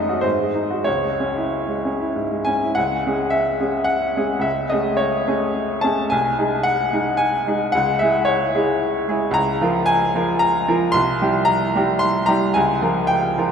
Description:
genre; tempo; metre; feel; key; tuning
classical, romantic character piece for solo piano; 92-114 BPM; 3/4; rubato; C# minor; A4 = 436 Hz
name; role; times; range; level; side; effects
bright baby grand piano; solo; 0.0-13.5 s; B#1 to C6; -17 LUFS; equal; none
room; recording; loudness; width
wet cathedral reverb, RT60 5.8 s; in a vast, echoing space; -17 LUFS; side -7 dB against mid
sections
0.0-2.8 A section; 2.8-13.5 B section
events
none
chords
0.2 G#7; 0.9 C#m; 4.5 Amaj7/C#; 6.1 G#/B#; 7.7 C#m; 9.4 Bbm/Db; 10.9 C; 12.6 Db6

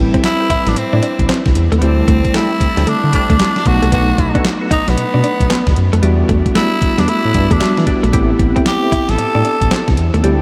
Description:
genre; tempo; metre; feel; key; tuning
R&B, new jack swing; 114 BPM; 4/4; swing 63% on 16ths; A dorian; A4 = 440 Hz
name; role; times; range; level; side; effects
tine electric piano; accompaniment; 0.0-10.4 s; F#3 to B4; -21 LUFS; equal; medium tremolo
smooth synth bass; bass; 0.0-10.4 s; A1 to E3; -18 LUFS; equal; none
direct-recorded clean electric guitar; riff; 0.1-10.4 s; G3 to E4; -23 LUFS; equal; lush chorus
percussive tonewheel organ; stabs; 0.1-10.4 s; A3 to A4; -29 LUFS; equal; chorus vibrato, slow rotary speaker
crisp 8-bit digital drum machine; drums; 0.1-10.4 s; handclaps, hi-hat, kick drum, snare drum; -20 LUFS; equal; none
raspy tenor saxophone; melody; 0.3-9.9 s; B3 to A4; -21 LUFS; equal; none
room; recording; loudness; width
moderate huge ambient reverb, RT60 4.0 s; dreamy mix soaked in reverb; -14 LUFS; mono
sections
0.0-10.4 A section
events
none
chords
0.0 Am7; 1.8 D7sus4; 3.7 B7; 6.0 Em7; 8.1 Am7

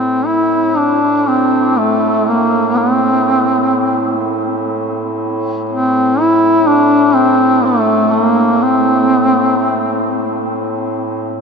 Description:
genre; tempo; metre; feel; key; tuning
caucasian folk; 58-62 BPM; 3/4; rubato; A phrygian; A4 = 438 Hz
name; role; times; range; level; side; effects
warm duduk; melody; 0.0-10.2 s; A3 to E4; -12 LUFS; equal; none
clear duduk; drone; 0.0-11.4 s; A2; -20 LUFS; equal; stereo widening
room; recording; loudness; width
wet huge ambient reverb, RT60 7.9 s; in a vast, echoing space, nothing above 7.8 kHz; -11 LUFS; side -5 dB against mid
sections
0.0-11.4 A section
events
none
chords
none

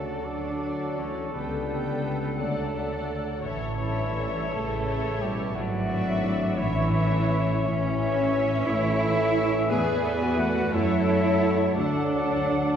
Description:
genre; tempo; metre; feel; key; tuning
classical; 57 BPM (dotted quarters); 6/8; uneven beats, rubato; A major from 7.7 s; A4 = 440 Hz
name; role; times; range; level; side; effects
muted symphonic violin section; melody; 0.0-12.8 s; D5 to A5; -38 LUFS; left 3 dB; none
bright clarinet; second line; 0.0-12.8 s; A4 to D5; -36 LUFS; left 3 dB; none
mellow flute section; second line; 0.0-12.8 s; C#5 to A5; -37 LUFS; left 1 dB; none
muted studio violin section; second line; 0.0-12.8 s; A4 to F#5; -37 LUFS; left 3 dB; none
warm cor anglais; second line; 0.0-12.8 s; E4 to G#5; -34 LUFS; equal; none
muted symphonic viola section; accompaniment; 0.0-12.8 s; F#4 to D5; -36 LUFS; equal; none
warm bassoon; accompaniment; 0.0-12.8 s; E3 to G3; -36 LUFS; left 1 dB; none
dark French horn section; sustained chords; 0.0-12.7 s; G2 to B3; -32 LUFS; right 1 dB; none
concert harp; arpeggios; 0.0-12.8 s; E2 to F#5; -34 LUFS; left 4 dB; none
muted symphonic cello section; bass; 0.0-12.8 s; E3 to A4; -29 LUFS; right 1 dB; none
muted symphonic double bass section; bass; 0.0-12.7 s; G#1 to F#2; -30 LUFS; right 2 dB; none
room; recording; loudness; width
wet concert hall reverb, RT60 2.1 s; recorded in a church or concert hall; -23 LUFS; side -8 dB against mid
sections
0.0-12.8 A section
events
none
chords
0.0 D; 1.3 A7/C#; 2.4 D; 3.4 A; 5.6 E7/G#; 6.6 A; 9.7 E7; 10.7 F#m7; 11.8 D

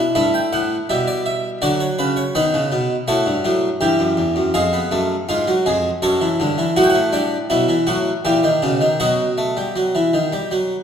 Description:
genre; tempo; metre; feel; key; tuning
classical, baroque-style 4-part fugue for harpsichord; 81 BPM; 3/4; straight; unclear; A4 = 441 Hz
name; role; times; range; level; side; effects
harpsichord; solo; 0.0-10.8 s; E2 to G5; -16 LUFS; equal; none
room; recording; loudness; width
wet recital hall reverb, RT60 1.6 s; heard from further back in the room; -16 LUFS; side -8 dB against mid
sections
0.0-10.8 A section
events
none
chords
0.2 Em/G; 1.6 D; 2.4 B7; 3.8 Em; 4.5 Fdim; 6.0 F#m; 6.8 A13sus4; 8.2 A#dim7; 9.0 B

